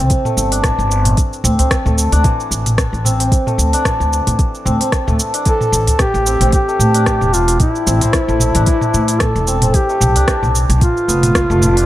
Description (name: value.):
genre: organic downtempo.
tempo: 112 BPM.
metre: 4/4.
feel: swing 56% on 16ths.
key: A minor.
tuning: A4 = 441 Hz.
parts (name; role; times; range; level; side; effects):
santur; arpeggios; 0.0-11.9 s; E3 to D4; -20 LUFS; left 1 dB; vintage 12-bit sampler grit, tape echo.
upright bass; bass; 0.0-11.9 s; E1 to A2; -16 LUFS; equal; sidechain pumping.
electronic kick drum; drums; 0.1-11.5 s; none; -16 LUFS; equal; none.
organic electronic drum kit; drums; 0.1-11.9 s; cabasa, hi-hat, rim click, toms; -19 LUFS; right 1 dB; none.
udu; percussion; 1.6-10.3 s; none; -18 LUFS; equal; none.
mellow duduk; melody; 5.5-11.9 s; E4 to A4; -17 LUFS; equal; digital delay.
room: light reverb, small room ambience.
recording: none.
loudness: -12 LUFS.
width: side -14 dB against mid.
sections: 0.0-11.9 A section.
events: none.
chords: 0.0 C6; 1.2 D5; 5.5 Am7; 9.7 Bm7b5.